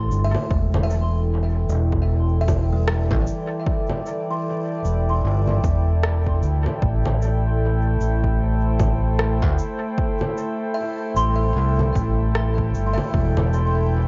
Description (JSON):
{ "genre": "ambient dub", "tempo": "76 BPM", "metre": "4/4", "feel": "swing 59% on 16ths", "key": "A minor", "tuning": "A4 = 440 Hz", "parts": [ { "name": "warbly tape-like pad", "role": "sustained chords", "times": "0.0-14.1 s", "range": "E3 to G5", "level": "-29 LUFS", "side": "equal", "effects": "chorus, built-in reverb" }, { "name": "buzzing kalimba", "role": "arpeggios", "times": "0.0-14.1 s", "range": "E3 to C6", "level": "-32 LUFS", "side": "equal", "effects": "tape echo" }, { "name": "overdriven fingered electric bass", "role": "bass", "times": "0.0-14.1 s", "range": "E1 to D2", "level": "-22 LUFS", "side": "equal", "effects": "none" }, { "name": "electronic cabasa, congas and rim click", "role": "drums", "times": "0.1-13.7 s", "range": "none", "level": "-31 LUFS", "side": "equal", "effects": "dub echo" }, { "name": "electronic kick drum", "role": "drums", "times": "0.5-13.3 s", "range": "none", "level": "-27 LUFS", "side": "equal", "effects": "overdrive" } ], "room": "light reverb, digital ambience", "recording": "nothing above 7.6 kHz", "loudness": "-21 LUFS", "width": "mono", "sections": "0.0-14.1 A section", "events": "none", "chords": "0.0 Am7; 0.5 Em7; 6.8 Am7; 13.1 Em", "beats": "| 0.51 1.30 2.09 2.88 | 3.67 4.45 5.24 6.03 | 6.82 7.61 8.40 9.19 | 9.98 10.77 11.56 12.35 | 13.14 13.93" }